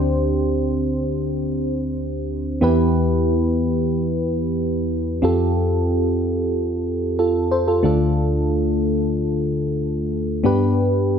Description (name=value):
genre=pop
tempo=free time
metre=none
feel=none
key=G mixolydian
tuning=A4 = 440 Hz
part: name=mellow FM electric piano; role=solo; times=0.0-11.2 s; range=D2 to C5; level=-18 LUFS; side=equal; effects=chorus
room=moderate lush hall reverb, RT60 1.6 s, digital ambience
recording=none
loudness=-18 LUFS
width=side -7 dB against mid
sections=0.0-7.8 A section; 7.8-11.2 B section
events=none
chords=0.0 Gsus4/D; 2.6 Em; 5.2 Fadd9; 7.8 Dm; 10.4 G